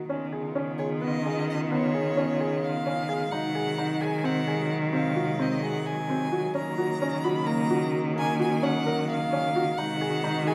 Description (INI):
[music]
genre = contemporary instrumental, chamber music in an uneven meter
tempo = 260 BPM (eighths)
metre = 7/8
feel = straight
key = unclear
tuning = A4 = 440 Hz
[part]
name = clear cello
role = bass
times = 0.0-10.5 s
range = Eb3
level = -32 LUFS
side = equal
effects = none
[part]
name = muted studio string section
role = sustained chords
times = 0.1-10.5 s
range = C3 to Gb4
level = -35 LUFS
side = equal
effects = none
[part]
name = felt-muted upright piano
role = arpeggios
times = 0.1-10.5 s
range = Bb3 to Bb4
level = -32 LUFS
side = equal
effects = none
[part]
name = rich violin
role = melody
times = 0.8-10.5 s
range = Db5 to Cb6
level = -34 LUFS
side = equal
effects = none
[sound]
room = moderate recital hall reverb, RT60 1.5 s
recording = none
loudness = -27 LUFS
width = mono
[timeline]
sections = 0.1-10.5 A section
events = none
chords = 0.1 Db7; 3.3 Ab7; 6.6 Gbmaj7; 9.8 Ab7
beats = | 0.09 0.32 0.56 0.79 1.02 1.25 1.48 | 1.71 1.94 2.17 2.40 2.63 2.86 3.10 | 3.33 3.56 3.79 4.02 4.25 4.48 4.71 | 4.94 5.17 5.40 5.63 5.86 6.09 6.32 | 6.55 6.79 7.01 7.25 7.48 7.71 7.94 | 8.17 8.40 8.63 8.86 9.09 9.32 9.55 | 9.78 10.02 10.25 10.48